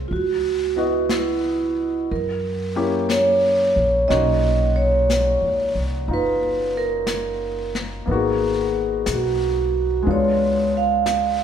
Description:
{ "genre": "jazz ballad", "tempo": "60 BPM", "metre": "4/4", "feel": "swing 66% on 8ths", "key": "unclear", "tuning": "A4 = 442 Hz", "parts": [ { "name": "warm concert grand piano", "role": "accompaniment", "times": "0.0-11.4 s", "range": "A#2 to Eb5", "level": "-25 LUFS", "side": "left 5 dB", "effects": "none" }, { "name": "upright bass", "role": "bass", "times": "0.0-11.4 s", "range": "F#1 to Gb2", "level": "-26 LUFS", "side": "equal", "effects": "none" }, { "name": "vibraphone with medium mallets", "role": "melody", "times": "0.1-11.4 s", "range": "Fb4 to F5", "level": "-20 LUFS", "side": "right 3 dB", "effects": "none" }, { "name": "vintage brush drum kit", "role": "drums", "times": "0.1-11.4 s", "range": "brushed snare drum, hi-hat, snare drum", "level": "-31 LUFS", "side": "left 4 dB", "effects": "none" } ], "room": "moderate concert hall reverb, RT60 2.3 s", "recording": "recorded in a church or concert hall", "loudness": "-18 LUFS", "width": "side -8 dB against mid", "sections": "0.0-11.4 A section", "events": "none", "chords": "0.1 Dbm11; 2.1 Gb7b9; 4.1 Bmaj9; 8.1 Abm7; 10.1 Db7b9", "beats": "| 0.11 1.11 2.10 3.10 | 4.09 5.09 6.08 7.08 | 8.08 9.07 10.07 11.06" }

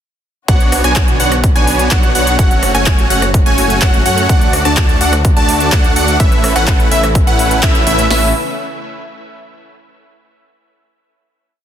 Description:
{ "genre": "EDM, festival progressive house", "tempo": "126 BPM", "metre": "4/4", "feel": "straight", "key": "A major", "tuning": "A4 = 441 Hz", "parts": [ { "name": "muted studio string section", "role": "sustained chords", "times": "0.5-8.3 s", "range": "A2 to C#5", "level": "-24 LUFS", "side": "left 2 dB", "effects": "sidechain pumping" }, { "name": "plucky unison lead", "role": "arpeggios", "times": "0.5-8.3 s", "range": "E5 to A5", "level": "-18 LUFS", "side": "equal", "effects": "sidechain pumping, tape echo" }, { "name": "supersaw chords", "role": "riff", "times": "0.5-8.3 s", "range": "A3 to A5", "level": "-16 LUFS", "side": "right 1 dB", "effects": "sidechain pumping, tape echo" }, { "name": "wide detuned saw bass", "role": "bass", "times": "0.5-8.3 s", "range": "F#1 to F#2", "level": "-18 LUFS", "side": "equal", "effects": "chorus, sidechain pumping" }, { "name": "big-room dance drum kit", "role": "drums", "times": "0.5-8.2 s", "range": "hi-hat, kick drum, snare drum", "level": "-12 LUFS", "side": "equal", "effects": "none" }, { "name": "big-room dance drum kit", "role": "drums", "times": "0.5-8.1 s", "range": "handclaps, hi-hat, rim click", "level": "-19 LUFS", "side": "equal", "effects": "none" } ], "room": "light reverb", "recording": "dense, heavily limited modern master", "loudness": "-10 LUFS", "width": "side -10 dB against mid", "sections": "0.5-8.1 drop; 8.1-10.0 final chord", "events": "drop 0.5-8.1; band accent 7.6", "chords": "0.5 Bmadd9; 2.4 F#m; 4.3 D; 6.2 Aadd9", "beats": "| 0.48 0.96 1.44 1.91 | 2.39 2.87 3.34 3.82 | 4.29 4.77 5.25 5.72 | 6.20 6.67 7.15 7.63 | 8.10" }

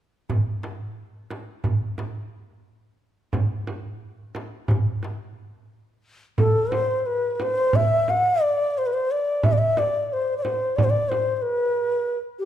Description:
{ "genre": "Turkish makam ensemble", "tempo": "177 BPM (eighths)", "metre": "9/8", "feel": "straight", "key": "unclear", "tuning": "A4 = 439 Hz", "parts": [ { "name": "darbuka", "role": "percussion", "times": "0.3-5.2 s", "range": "none", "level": "-29 LUFS", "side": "equal", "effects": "none" }, { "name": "frame drum", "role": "percussion", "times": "0.3-11.3 s", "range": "none", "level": "-25 LUFS", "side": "right 2 dB", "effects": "none" }, { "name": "bansuri", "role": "melody", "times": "6.4-12.5 s", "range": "G4 to F#5-29c", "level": "-21 LUFS", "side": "left 1 dB", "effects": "none" } ], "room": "moderate scoring stage reverb, RT60 1.7 s", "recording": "minimal, uncompressed stereo recording", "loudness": "-21 LUFS", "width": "side -11 dB against mid", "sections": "0.3-6.4 A section; 6.4-12.5 B section", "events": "none", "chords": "none", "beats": "| 0.30 0.64 0.98 1.31 1.65 1.99 2.33 2.67 3.00 | 3.34 3.68 4.02 4.36 4.70 5.03 5.37 5.71 6.05 | 6.39 6.72 7.06 7.40 7.74 8.08 8.41 8.75 9.09 | 9.43 9.77 10.11 10.45 10.78 11.12 11.46 11.80 12.14" }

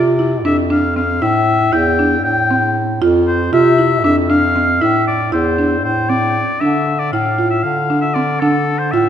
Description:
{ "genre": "contemporary instrumental, chamber music in an uneven meter", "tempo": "234 BPM (eighths)", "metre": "7/8", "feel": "straight", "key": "unclear", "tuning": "A4 = 439 Hz", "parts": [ { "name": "clear oboe", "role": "melody", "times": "0.0-9.1 s", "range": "A4 to G5", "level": "-18 LUFS", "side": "left 2 dB", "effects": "none" }, { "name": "buzzing marimba with medium mallets", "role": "arpeggios", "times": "0.0-9.1 s", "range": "C4 to F4", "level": "-16 LUFS", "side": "right 1 dB", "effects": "none" }, { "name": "warm bass clarinet", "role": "bass", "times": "0.0-9.1 s", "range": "E2 to D3", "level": "-18 LUFS", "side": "equal", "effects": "none" } ], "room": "wet concert hall reverb, RT60 2.3 s", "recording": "none", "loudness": "-13 LUFS", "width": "side -9 dB against mid", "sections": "0.0-6.6 A section; 6.6-9.1 B section", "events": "none", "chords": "0.0 F5; 1.2 Am7; 3.0 F5; 4.8 Am; 6.6 Dm", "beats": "0.19 0.45 0.71 0.96 | 1.22 1.48 1.73 1.99 2.25 2.50 2.76 | 3.02 3.27 3.53 3.79 4.04 4.30 4.56 | 4.82 5.07 5.33 5.59 5.84 6.10 6.36 | 6.62 6.87 7.13 7.39 7.65 7.90 8.16 | 8.42 8.68 8.94" }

